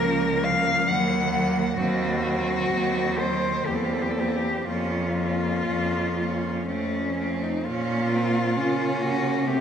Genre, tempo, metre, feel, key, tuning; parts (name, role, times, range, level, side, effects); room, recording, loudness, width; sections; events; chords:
classical, lyrical piece for cello ensemble; 59-68 BPM; 3/4; rubato; Bb minor; A4 = 440 Hz
rich cello; melody; 0.0-9.6 s; Db4 to Gb5; -26 LUFS; left 2 dB
rich cello; second line; 0.0-9.6 s; A3 to Db4; -32 LUFS; right 6 dB
warm cello; accompaniment; 0.0-9.6 s; F3 to Db4; -28 LUFS; equal
clear cello; bass; 0.0-9.6 s; Db2 to Db3; -28 LUFS; right 1 dB
wet church reverb, RT60 2.8 s; recorded in a church or concert hall; -22 LUFS; side -8 dB against mid
0.0-7.7 A section; 7.7-9.6 B section
0.0 Bbm/Db; 0.9 Ebm; 3.7 C7/E; 4.7 Bbm/F; 6.7 F; 7.7 Bbm